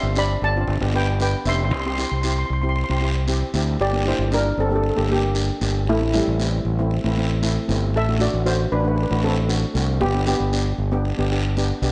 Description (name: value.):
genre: calypso.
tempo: 116 BPM.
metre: 4/4.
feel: straight.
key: unclear.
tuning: A4 = 440 Hz.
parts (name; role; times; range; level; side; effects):
steel pan; melody; 0.0-11.0 s; G3 to C6; -26 LUFS; equal; none.
steel pan; accompaniment; 0.0-11.9 s; A3 to G4; -29 LUFS; equal; none.
growling fingered electric bass; bass; 0.0-11.9 s; F1 to D2; -24 LUFS; equal; overdrive.
guiro; percussion; 0.2-11.9 s; none; -34 LUFS; equal; none.
room: light reverb, studio reverb.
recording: none.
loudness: -21 LUFS.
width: mono.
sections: 0.0-3.8 A section; 3.8-11.9 A section.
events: none.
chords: 0.0 G7sus4; 0.7 G7; 1.7 C; 3.8 Gm; 5.9 Am; 7.9 D7/A; 10.0 G.